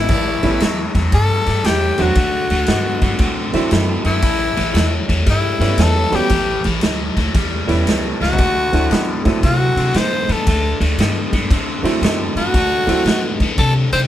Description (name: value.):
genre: electric blues shuffle.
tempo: 116 BPM.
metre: 4/4.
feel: swing 66% on 8ths.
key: unclear.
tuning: A4 = 440 Hz.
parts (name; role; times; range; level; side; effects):
growling tenor saxophone; melody; 0.0-14.0 s; E4 to C5; -19 LUFS; left 2 dB; none.
warm upright piano; accompaniment; 0.0-13.0 s; F#3 to F#4; -21 LUFS; right 4 dB; none.
crunchy overdriven guitar; riff; 0.0-14.1 s; A2 to C4; -23 LUFS; left 3 dB; phaser.
upright bass; bass; 0.0-14.1 s; A1 to C3; -20 LUFS; equal; none.
raw garage drum kit; drums; 0.1-14.0 s; crash cymbal, kick drum, ride cymbal, snare drum, toms; -20 LUFS; equal; none.
room: light reverb.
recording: band playing live in one room.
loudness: -14 LUFS.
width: side -12 dB against mid.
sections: 0.1-14.1 A section.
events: drum fill 8.1.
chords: 0.1 A7(no3); 2.2 D7; 4.2 A7; 8.4 D7.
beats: | 0.08 0.60 1.12 1.64 | 2.15 2.67 3.19 3.71 | 4.23 4.75 5.27 5.79 | 6.31 6.83 7.35 7.87 | 8.38 8.90 9.42 9.94 | 10.46 10.98 11.50 12.02 | 12.54 13.06 13.58.